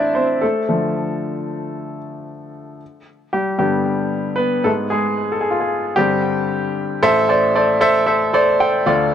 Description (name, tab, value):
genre	pop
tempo	114 BPM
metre	4/4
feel	straight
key	A minor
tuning	A4 = 439 Hz
part	clear baby grand piano	solo	0.0-9.1 s	A1 to G5	-16 LUFS	equal	digital delay
room	light reverb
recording	worn, warbling old tape, cassette tape, warbly pitch drift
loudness	-16 LUFS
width	side -9 dB against mid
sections	0.0-7.0 A section; 7.0-9.1 B section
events	grand piano solo 0.0-7.0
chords	0.4 Dm; 2.8 G; 4.7 G#m6; 6.0 Gsus4; 7.0 Am